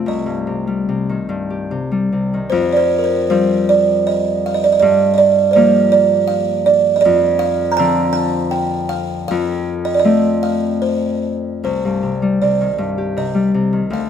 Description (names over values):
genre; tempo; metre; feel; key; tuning
celtic folk, Celtic slow air; 72-82 BPM; 3/4; rubato; C dorian; A4 = 440 Hz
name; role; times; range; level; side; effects
buzzing kalimba; melody; 0.0-14.1 s; Bb4 to Bb5; -15 LUFS; right 5 dB; none
Celtic harp; accompaniment; 0.0-14.1 s; C2 to A4; -18 LUFS; left 4 dB; none
room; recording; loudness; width
moderate recital hall reverb, RT60 1.3 s; close, detailed microphones; -14 LUFS; side -8 dB against mid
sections
0.0-2.5 A section; 2.5-11.6 B section; 11.6-14.1 A section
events
none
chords
0.1 Cm; 2.5 Fsus2; 4.8 Gm7; 7.0 Dm7/F; 9.3 F; 11.6 Cmadd9